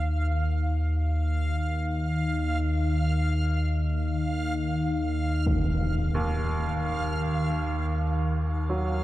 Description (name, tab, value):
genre	dark ambient drone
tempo	free time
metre	none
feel	none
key	unclear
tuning	A4 = 440 Hz
part	deep rumbling drone	drone	0.0-9.0 s	Eb2 to Eb3	-25 LUFS	equal	built-in reverb, phaser
part	backwards swelling texture	texture	0.0-9.0 s	F5	-35 LUFS	right 1 dB	built-in reverb, shimmer reverb
part	impact	percussion	5.5-5.6 s	none	-33 LUFS	equal	low-pass filter on sfx
part	bright baby grand piano	arpeggios	6.1-9.0 s	Eb2 to Gb3	-31 LUFS	right 2 dB	tape echo, shimmer reverb
room	wet cathedral reverb, RT60 5.4 s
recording	worn, warbling old tape, cassette tape, warbly pitch drift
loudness	-24 LUFS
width	side -15 dB against mid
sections	0.0-9.0 A section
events	fade-in on synth texture 0.0-9.0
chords	none